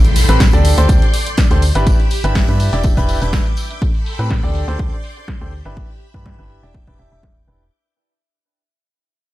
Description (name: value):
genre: piano house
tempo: 123 BPM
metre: 4/4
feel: straight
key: unclear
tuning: A4 = 440 Hz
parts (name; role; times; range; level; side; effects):
- string machine, violins; sustained chords; 0.0-7.7 s; G4 to G6; -27 LUFS; left 1 dB; ensemble chorus, sidechain pumping
- house drum kit; drums; 0.0-7.7 s; hi-hat, snare drum; -24 LUFS; equal; low-pass filter on hats, low-pass filter on cymbals, low-pass filter on snare
- impact; sound effects; 0.0-1.9 s; none; -20 LUFS; equal; none
- vintage brush drum kit; drums; 0.2-3.7 s; hi-hat, snare drum, tambourine; -30 LUFS; equal; high-pass filter on hats, high-pass filter on snare, high-pass filter on perc, high-pass filter on room, tape echo
- clear grand piano; riff; 0.3-7.6 s; C4 to E5; -22 LUFS; equal; vintage 12-bit sampler grit, sidechain pumping, low-pass filter, tape echo
- organ-like FM bass; bass; 0.3-7.7 s; E1 to A2; -16 LUFS; equal; tube saturation, sidechain pumping
- electronic kick drum; drums; 0.4-7.3 s; none; -15 LUFS; equal; none
room: little or no reverb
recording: echo-heavy mix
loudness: -12 LUFS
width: side -16 dB against mid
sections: 0.0-7.7 A section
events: fade-out 0.0-7.7; impact 0.0-1.9; filter sweep on drum 0.0-7.7; filter sweep on grand piano 0.0-7.7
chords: 0.0 Am9; 0.6 D7sus4; 1.6 G6; 2.6 Em7; 3.8 Am9; 4.5 D7sus4; 5.5 G6; 6.5 Em7